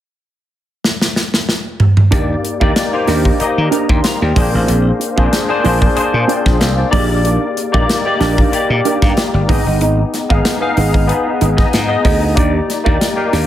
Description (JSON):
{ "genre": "polished 1980s jazz-funk pop", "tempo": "94 BPM", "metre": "4/4", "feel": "swing 54% on 16ths", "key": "Eb major", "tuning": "A4 = 440 Hz", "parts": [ { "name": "modern studio drum kit", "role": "drums", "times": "0.8-13.5 s", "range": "hi-hat, kick drum, snare drum, toms", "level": "-15 LUFS", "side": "equal", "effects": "gated reverb" }, { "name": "barky tine electric piano", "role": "accompaniment", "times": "2.1-13.5 s", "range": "Bb3 to D6", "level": "-16 LUFS", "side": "left 3 dB", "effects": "ensemble chorus" }, { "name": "mellow electric guitar", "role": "riff", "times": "2.1-13.5 s", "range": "C4 to F5", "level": "-21 LUFS", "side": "right 7 dB", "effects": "wide subtle chorus" }, { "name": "slap bass", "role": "bass", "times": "2.1-13.5 s", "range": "G1 to Eb3", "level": "-16 LUFS", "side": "equal", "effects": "none" } ], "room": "light reverb, small room ambience", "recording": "none", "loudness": "-12 LUFS", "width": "side -12 dB against mid", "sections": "0.0-2.1 A section; 2.1-13.5 B section", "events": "drum fill 0.8-2.1", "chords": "0.0 N.C.; 2.1 Ebmaj7; 4.4 Bb9; 6.9 Ebmaj7/Bb; 9.5 Abm; 12.4 Ebmaj7" }